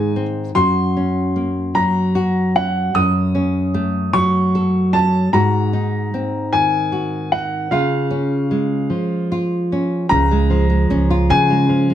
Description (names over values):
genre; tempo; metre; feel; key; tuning
acoustic folk duo or small band; 50 BPM (dotted quarters); 6/8; straight; Db major; A4 = 440 Hz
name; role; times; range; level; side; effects
warm upright piano; melody; 0.0-11.9 s; F5 to Eb6; -20 LUFS; left 1 dB; plate reverb
nylon-string guitar; accompaniment; 0.0-11.9 s; Gb2 to A4; -17 LUFS; equal; none
upright bass; bass; 10.1-11.9 s; Db2 to Db3; -17 LUFS; right 1 dB; none
room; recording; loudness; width
moderate studio reverb, RT60 0.6 s; none; -15 LUFS; side -11 dB against mid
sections
0.0-10.1 A section; 10.1-11.9 B section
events
none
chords
0.0 Ab; 0.6 Gb; 2.9 Gbm; 5.3 Ab7; 7.7 Db